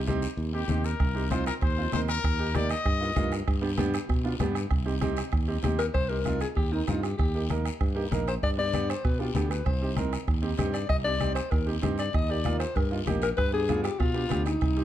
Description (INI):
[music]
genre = latin, cumbia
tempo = 194 BPM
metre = 4/4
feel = straight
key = C minor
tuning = A4 = 444 Hz
[part]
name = modern bright fingered electric bass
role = bass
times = 0.0-14.8 s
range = Bb1 to B2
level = -30 LUFS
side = equal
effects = none
[part]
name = bright upright piano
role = accompaniment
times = 0.1-14.8 s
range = Bb3 to Bb4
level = -33 LUFS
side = right 4 dB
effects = none
[part]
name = congas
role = percussion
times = 0.1-14.8 s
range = none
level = -33 LUFS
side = left 4 dB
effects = none
[part]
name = guiro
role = percussion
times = 0.1-14.8 s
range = none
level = -44 LUFS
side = left 7 dB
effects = none
[part]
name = bright trumpet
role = second line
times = 0.5-3.3 s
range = G4 to Eb5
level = -31 LUFS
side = left 5 dB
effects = none
[part]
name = bombo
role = percussion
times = 1.0-14.8 s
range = none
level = -30 LUFS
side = right 2 dB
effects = none
[part]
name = clear alto saxophone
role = melody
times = 5.8-14.8 s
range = Eb4 to Eb5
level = -30 LUFS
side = left 4 dB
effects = none
[sound]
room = light reverb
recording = dark, warm production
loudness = -25 LUFS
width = side -12 dB against mid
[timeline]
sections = 0.0-5.9 A section; 5.9-14.8 B section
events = trumpet solo 0.0-5.9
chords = 0.0 Cm; 2.2 Eb; 3.5 G; 4.7 Cm; 7.2 Eb; 8.4 G; 9.7 Cm; 12.1 Eb; 13.4 G7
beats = 0.08 0.39 0.70 | 1.01 1.31 1.62 1.93 | 2.24 2.55 2.86 3.17 | 3.48 3.79 4.09 4.40 | 4.71 5.02 5.33 5.64 | 5.95 6.26 6.57 6.88 | 7.19 7.50 7.81 8.12 | 8.43 8.74 9.04 9.36 | 9.66 9.97 10.28 10.59 | 10.90 11.21 11.52 11.83 | 12.14 12.45 12.76 13.07 | 13.38 13.69 14.00 14.31 | 14.62